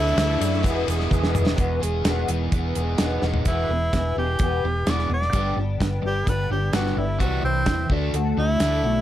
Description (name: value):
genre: folk rock and heartland rock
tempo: 128 BPM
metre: 4/4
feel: straight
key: unclear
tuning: A4 = 439 Hz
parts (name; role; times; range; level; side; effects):
- edgy tenor saxophone; melody; 0.0-9.0 s; C4 to D5; -26 LUFS; right 1 dB; none
- picked twelve-string acoustic guitar; accompaniment; 0.0-9.0 s; E2 to G#4; -30 LUFS; left 4 dB; ensemble chorus
- bright tonewheel organ; sustained chords; 0.0-1.6 s; G#4 to D#6; -34 LUFS; right 1 dB; chorus vibrato, fast rotary speaker
- overdriven electric guitar; riff; 0.0-9.0 s; E2 to G#4; -27 LUFS; right 1 dB; none
- hollow-body short-scale fingered electric bass; bass; 0.0-9.0 s; E1 to F#2; -25 LUFS; equal; none
- egg shaker; percussion; 0.1-1.5 s; none; -42 LUFS; right 8 dB; none
- damped 70s drum kit; drums; 0.2-8.7 s; hi-hat, kick drum, ride cymbal, snare drum, toms; -24 LUFS; equal; none
room: light reverb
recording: none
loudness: -20 LUFS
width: side -12 dB against mid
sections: 0.0-1.6 A section; 1.6-3.5 B section; 3.5-9.0 C section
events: drum fill 1.1-1.6, 3.2; tenor saxophone solo 3.5-9.0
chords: 0.0 Dsus2; 0.6 Emaj7; 3.5 E; 5.3 G; 7.2 C; 7.9 D